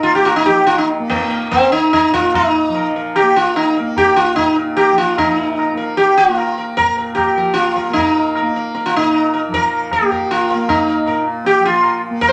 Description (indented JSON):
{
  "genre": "indian classical, Hindustani",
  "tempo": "151 BPM",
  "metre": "7/4",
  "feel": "uneven beats",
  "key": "unclear",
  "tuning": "A4 = 440 Hz",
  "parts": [
    { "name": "sitar", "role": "melody", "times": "0.0-12.3 s", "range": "Bb3 to C5", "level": "-16 LUFS", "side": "equal", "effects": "none" },
    { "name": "tanpura", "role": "drone", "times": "0.0-12.3 s", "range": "Bb2 to Bb3", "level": "-28 LUFS", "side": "equal", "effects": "none" },
    { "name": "tabla", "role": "percussion", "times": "0.1-12.3 s", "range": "none", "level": "-25 LUFS", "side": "equal", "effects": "none" }
  ],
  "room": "wet studio reverb, RT60 0.5 s",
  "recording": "none",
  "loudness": "-15 LUFS",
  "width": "mono",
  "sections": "0.0-5.2 A section; 5.2-12.3 B section",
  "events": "speeding up 0.0-12.3",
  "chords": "none"
}